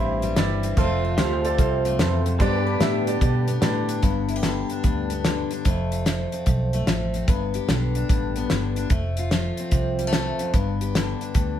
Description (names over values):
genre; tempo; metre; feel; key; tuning
honky-tonk and classic country; 148 BPM; 4/4; swing 65% on 8ths; G mixolydian; A4 = 440 Hz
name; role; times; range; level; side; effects
bright grand piano; accompaniment; 0.0-4.0 s; E4 to E5; -28 LUFS; right 6 dB; none
picked steel-string acoustic guitar; accompaniment; 0.0-11.6 s; E2 to G4; -26 LUFS; left 3 dB; none
pedal steel guitar; sustained chords; 0.0-4.0 s; G4 to F5; -29 LUFS; right 1 dB; none
vintage muted fingered electric bass; bass; 0.0-11.6 s; F1 to B2; -26 LUFS; equal; none
damped 70s drum kit; drums; 0.2-11.5 s; hi-hat, kick drum, snare drum; -23 LUFS; equal; none
room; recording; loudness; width
moderate studio reverb, RT60 0.8 s; heard from further back in the room; -20 LUFS; side -10 dB against mid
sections
0.0-4.0 A section; 4.0-11.6 B section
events
none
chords
0.0 C; 0.8 F; 2.4 G; 5.7 F; 7.3 G; 8.9 F; 10.5 G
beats
0.37 | 0.78 1.19 1.59 2.00 | 2.40 2.81 3.22 3.62 | 4.03 4.44 4.84 5.25 | 5.66 6.06 6.47 6.88 | 7.28 7.69 8.10 8.50 | 8.91 9.32 9.72 10.13 | 10.54 10.95 11.35